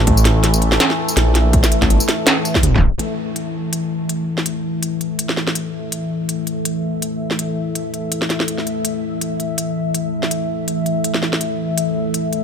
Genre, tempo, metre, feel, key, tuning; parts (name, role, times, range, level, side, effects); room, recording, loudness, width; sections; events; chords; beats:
half-time drum and bass; 164 BPM; 4/4; swing 55% on 16ths, half-time; A4 = 440 Hz
deep dark ambient pad; sustained chords; 0.0-12.4 s; E3 to E5; -20 LUFS; left 2 dB; chorus, built-in reverb, sidechain pumping
dark detuned saw bass; bass; 0.0-3.0 s; G1 to E2; -15 LUFS; equal
electronic kick drum; drums; 0.1-2.8 s; -16 LUFS; equal; studio reverb
industrial drum kit; drums; 0.1-12.4 s; hi-hat, snare drum, tambourine; -19 LUFS; equal; studio reverb
light reverb, digital ambience; tape stop; -16 LUFS; side -7 dB against mid
0.0-3.0 A section; 3.0-12.4 B section
drop 0.0-3.0; tape stop 2.6-3.0
0.0 A5
| 0.07 0.44 0.80 1.17 | 1.53 1.90 2.27 2.63 | 3.00 3.36 3.73 4.09 | 4.46 4.83 5.19 5.56 | 5.92 6.29 6.66 7.02 | 7.39 7.75 8.12 8.48 | 8.85 9.22 9.58 9.95 | 10.31 10.68 11.05 11.41 | 11.78 12.14